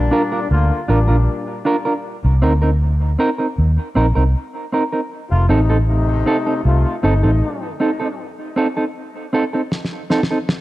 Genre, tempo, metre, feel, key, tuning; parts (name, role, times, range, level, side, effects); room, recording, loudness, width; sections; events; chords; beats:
dub reggae; 78 BPM; 4/4; straight; A4 = 440 Hz
bright trombone section; second line; 0.0-7.8 s; Bb2 to F4; -24 LUFS; left 3 dB; dub echo
vintage muted fingered electric bass; bass; 0.0-7.4 s; F1 to Eb2; -14 LUFS; equal
mellow electric guitar; accompaniment; 0.1-10.4 s; C4 to Bb4; -20 LUFS; right 2 dB; dub echo
snare drum; drums; 9.7-10.6 s; -21 LUFS; equal
light reverb; dark, warm production; -15 LUFS; side -16 dB against mid
0.0-10.6 A section
break 8.2-10.6; drum fill 9.7-10.6
0.0 Gm7; 2.0 Cm7; 5.1 F7 (rootless)
0.50 1.27 | 2.04 2.81 3.57 4.34 | 5.11 5.88 6.64 7.41 | 8.18 8.95 9.72 10.48